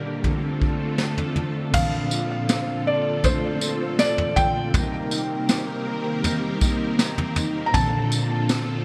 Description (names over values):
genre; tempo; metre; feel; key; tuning
dream pop; 80 BPM; 4/4; straight; unclear; A4 = 440 Hz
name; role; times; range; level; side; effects
felt-muted upright piano; melody; 0.0-8.8 s; C5 to Bb5; -28 LUFS; equal; digital delay
string machine, violas; sustained chords; 0.0-8.8 s; Bb2 to Bb4; -31 LUFS; equal; phaser, ensemble chorus
electric guitar at the edge of break-up; arpeggios; 0.0-8.8 s; Bb2 to Bb4; -32 LUFS; equal; ensemble chorus, digital delay
vintage brush drum kit; drums; 0.2-8.7 s; crash cymbal, kick drum, snare drum, tambourine, toms; -26 LUFS; equal; none
mellow electric guitar; accompaniment; 1.7-8.8 s; Bb2 to Bb4; -32 LUFS; equal; harmonic tremolo, lush chorus
room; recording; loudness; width
moderate lush hall reverb, RT60 2.8 s; bright 1980s-style digital production; -23 LUFS; mono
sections
0.0-1.7 A section; 1.7-8.8 B section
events
none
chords
0.2 Dm7; 1.7 Bbmaj9; 4.7 Cm7; 7.7 Bbmaj9